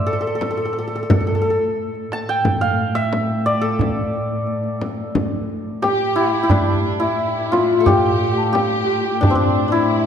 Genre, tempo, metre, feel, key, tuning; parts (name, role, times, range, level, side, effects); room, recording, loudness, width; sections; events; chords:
Persian modal ensemble; 88 BPM; 4/4; straight; A dastgah shur; A4 = 442 Hz
santur; melody; 0.0-10.1 s; C4 to A5; -19 LUFS; left 1 dB
dark studio cello section; drone; 0.0-10.1 s; A2; -26 LUFS; equal
frame drum; percussion; 0.4-9.4 s; -23 LUFS; left 2 dB
tombak; percussion; 0.4-9.7 s; -23 LUFS; right 3 dB
large celesta; second line; 5.8-10.1 s; D5 to A5; -26 LUFS; left 7 dB
warm symphonic violin section; second line; 5.8-10.1 s; D4 to G4; -25 LUFS; right 3 dB
wet scoring stage reverb, RT60 1.6 s; dark, warm production; -17 LUFS; side -8 dB against mid
0.0-6.5 A section; 6.5-10.1 B section